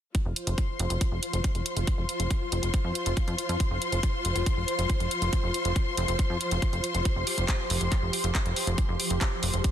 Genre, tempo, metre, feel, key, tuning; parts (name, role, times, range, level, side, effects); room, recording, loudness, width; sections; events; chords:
psychedelic trance; 139 BPM; 4/4; straight; A4 = 440 Hz
pulsing gated texture; sustained chords; 0.1-9.7 s; F3 to G4; -36 LUFS; equal; chorus, built-in reverb, sidechain pumping
electronic kick drum; drums; 0.1-9.7 s; -27 LUFS; equal; studio ambience
garage drum kit; drums; 0.1-9.7 s; handclaps, hi-hat; -32 LUFS; right 1 dB; studio ambience
warm symphonic string section; texture; 0.1-9.7 s; F4 to C6; -32 LUFS; left 2 dB; sidechain pumping
plucky analog bass; bass; 0.3-9.6 s; F1 to F2; -29 LUFS; equal
light reverb; dense, heavily limited modern master; -25 LUFS; side -10 dB against mid
0.1-9.7 A section
0.1 F5